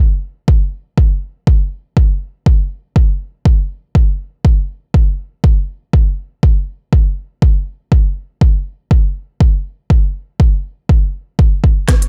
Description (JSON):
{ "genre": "house", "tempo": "121 BPM", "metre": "4/4", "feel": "swing 55% on 16ths", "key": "none", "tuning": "none", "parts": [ { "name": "electronic kick drum", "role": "drums", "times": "0.5-12.0 s", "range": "none", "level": "-13 LUFS", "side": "equal", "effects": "studio ambience" }, { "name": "afro-pop drum kit", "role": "drums", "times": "11.9-12.1 s", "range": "hi-hat, rim click, snare drum", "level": "-21 LUFS", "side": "equal", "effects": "low-pass filter on snare, studio ambience, low-pass filter on hats" } ], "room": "digital ambience", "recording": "dry, gritty hardware recording", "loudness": "-15 LUFS", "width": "mono", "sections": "0.0-11.9 A section", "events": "drum fill 11.9", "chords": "none", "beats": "0.48 0.98 1.47 | 1.97 2.46 2.96 3.46 | 3.95 4.45 4.94 5.44 | 5.93 6.43 6.93 7.42 | 7.92 8.41 8.91 9.41 | 9.90 10.40 10.89 11.39 | 11.88" }